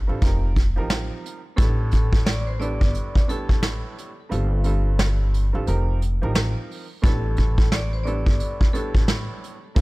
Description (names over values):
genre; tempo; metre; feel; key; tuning
hip hop, boom-bap hip-hop; 88 BPM; 4/4; swing 61% on 16ths; A minor; A4 = 436 Hz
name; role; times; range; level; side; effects
upright bass; bass; 0.0-9.8 s; F1 to A1; -23 LUFS; equal; none
dark upright piano; accompaniment; 0.1-9.8 s; G2 to Bb4; -31 LUFS; right 3 dB; cassette tape, high-pass filter, low-pass filter
vintage brush drum kit; drums; 0.2-9.8 s; hi-hat, kick drum, snare drum; -21 LUFS; equal; none
finger snap; percussion; 0.9-6.5 s; none; -39 LUFS; left 4 dB; none
vibraphone with hard mallets; melody; 1.6-9.0 s; A4 to D6; -33 LUFS; left 3 dB; high-pass filter, low-pass filter, tape echo
room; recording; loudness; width
small room ambience; none; -19 LUFS; side -22 dB against mid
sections
0.0-7.0 A section; 7.0-9.8 A section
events
kick muted 4.3-7.0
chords
0.2 F9sus4; 1.6 A9sus4; 4.3 G9sus4; 5.7 F9sus4; 7.0 A9sus4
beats
0.22 0.90 | 1.58 2.26 2.94 3.63 | 4.31 4.99 5.67 6.35 | 7.04 7.72 8.40 9.08 | 9.76